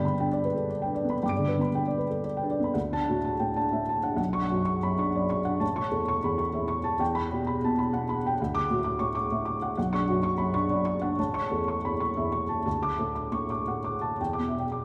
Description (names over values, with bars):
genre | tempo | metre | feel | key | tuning
neoclassical minimalist piano | 114-132 BPM | 3/4 | rubato | unclear | A4 = 440 Hz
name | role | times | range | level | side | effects
felt-muted upright piano | solo | 0.0-14.8 s | A1 to D7 | -28 LUFS | equal | none
room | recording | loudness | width
wet recital hall reverb, RT60 1.6 s | recorded in a church or concert hall | -28 LUFS | mono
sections
0.0-2.7 A section; 2.7-14.2 B section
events
none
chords
0.0 G; 2.7 Dadd9; 4.2 Bmadd9; 5.6 A; 7.0 Emadd9; 8.4 Dadd9; 9.8 Bmadd9; 11.2 A; 12.7 D; 14.2 Em7